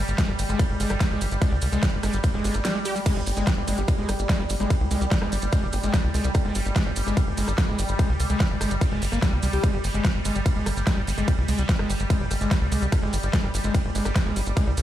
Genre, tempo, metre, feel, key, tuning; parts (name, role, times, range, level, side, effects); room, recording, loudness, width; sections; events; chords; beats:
psychedelic trance; 146 BPM; 4/4; straight; A4 = 440 Hz
bubbling stepped-filter texture; sustained chords; 0.0-14.8 s; G3; -32 LUFS; right 1 dB; chorus, built-in reverb, sidechain pumping
tight sequencer bass; bass; 0.0-14.8 s; F1 to C2; -26 LUFS; equal; tube saturation
big-room dance drum kit; drums; 0.1-14.8 s; crash cymbal, hi-hat, ride cymbal, rim click, snare drum; -31 LUFS; equal; overdrive, studio reverb
maracas; percussion; 0.1-14.8 s; -37 LUFS; right 4 dB
screaming distorted acid line; riff; 0.2-14.7 s; G3 to G4; -30 LUFS; left 1 dB; distortion, chorus, auto-pan, sidechain pumping, tape echo
electronic kick drum; drums; 0.2-14.6 s; -22 LUFS; equal; overdrive, studio reverb
little or no reverb; played on a big sound system in a bare room, large studio reverb; -21 LUFS; side -12 dB against mid
0.0-14.8 A section
0.0 Fmadd9 (rootless)
0.18 0.59 1.00 | 1.42 1.83 2.24 2.65 | 3.06 3.47 3.88 4.29 | 4.70 5.12 5.53 5.94 | 6.35 6.76 7.17 7.58 | 7.99 8.40 8.81 9.22 | 9.63 10.05 10.46 10.87 | 11.28 11.69 12.10 12.51 | 12.92 13.33 13.74 14.16 | 14.57